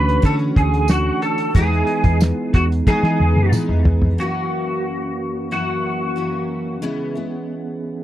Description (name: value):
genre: indie pop, bedroom pop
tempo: 91 BPM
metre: 4/4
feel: straight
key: unclear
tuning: A4 = 443 Hz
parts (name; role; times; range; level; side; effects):
- electric guitar through a small old amp; melody; 0.0-6.5 s; F#4 to B4; -22 LUFS; equal; ensemble chorus, tape echo
- mellow tonewheel organ; accompaniment; 0.0-8.0 s; E3 to G#4; -25 LUFS; right 4 dB; fast rotary speaker
- picked steel-string acoustic guitar; accompaniment; 0.0-8.0 s; F#2 to F#4; -26 LUFS; left 4 dB; analog chorus, vibrato effect
- vintage muted picked electric bass; bass; 0.0-4.2 s; D2 to E3; -18 LUFS; equal; none
- cloth-damped thuddy drum kit; drums; 0.1-4.2 s; hi-hat, kick drum, snare drum, toms; -17 LUFS; equal; none
- tambourine; percussion; 0.9-3.7 s; none; -34 LUFS; right 10 dB; none
room: light reverb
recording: dry, close 1970s-style studio recording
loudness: -17 LUFS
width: side -13 dB against mid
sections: 0.0-4.2 A section; 4.2-8.0 B section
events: drum fill 2.9-4.2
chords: 0.0 Dmaj9#11; 1.6 Emaj7; 4.2 F#7; 6.8 C#m7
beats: 0.24 0.90 | 1.55 2.21 2.87 3.53 | 4.19 4.85 5.51 6.17 | 6.83 7.49